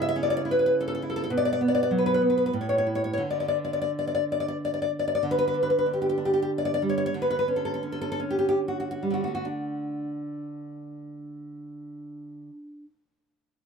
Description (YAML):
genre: romantic piece for solo classical guitar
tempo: 64-107 BPM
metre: 3/4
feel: rubato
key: D major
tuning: A4 = 442 Hz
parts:
  - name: nylon-string guitar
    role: solo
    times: 0.0-12.8 s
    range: A2 to E5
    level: -25 LUFS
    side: equal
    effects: none
room: moderate spring reverb, RT60 1.4 s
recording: none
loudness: -24 LUFS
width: side -6 dB against mid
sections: 0.0-5.2 A section; 5.2-9.4 B section; 9.4-13.7 C section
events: slowing down 4.2-9.4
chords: 0.0 C#m7; 1.3 B5; 2.5 A5; 3.2 N.C.; 5.2 G5/D; 7.1 Dmaj7; 9.4 D5